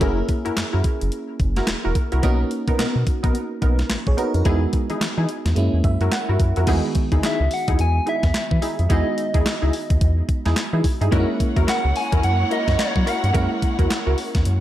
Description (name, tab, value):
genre	R&B, new jack swing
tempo	108 BPM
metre	4/4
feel	swing 60% on 16ths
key	unclear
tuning	A4 = 441 Hz
part	FM electric piano	accompaniment	0.0-14.6 s	D#3 to F#5	-27 LUFS	right 2 dB	chorus
part	funky polysynth comp	stabs	0.0-14.2 s	B3 to A#4	-27 LUFS	left 1 dB	chorus, diffuse ambient delay
part	round analog bass	bass	0.0-14.6 s	E1 to F#3	-20 LUFS	equal	none
part	clean 12-bit digital drum machine	drums	0.0-14.6 s	crash cymbal, handclaps, hi-hat, kick drum, snare drum	-22 LUFS	equal	none
part	soft struck synth lead	melody	7.3-13.9 s	C#5 to G#5	-26 LUFS	equal	chorus, diffuse ambient delay
part	warm studio string section	sustained chords	11.1-14.6 s	A#3 to F#5	-29 LUFS	left 1 dB	none
room	light reverb, digital ambience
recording	none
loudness	-18 LUFS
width	side -13 dB against mid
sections	0.0-6.7 A section; 6.7-14.6 B section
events	FM electric piano fill 5.6-6.7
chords	0.0 F#7; 2.2 Bmaj7; 4.5 Emaj7; 5.6 F#7; 6.7 Emaj7; 11.1 F#7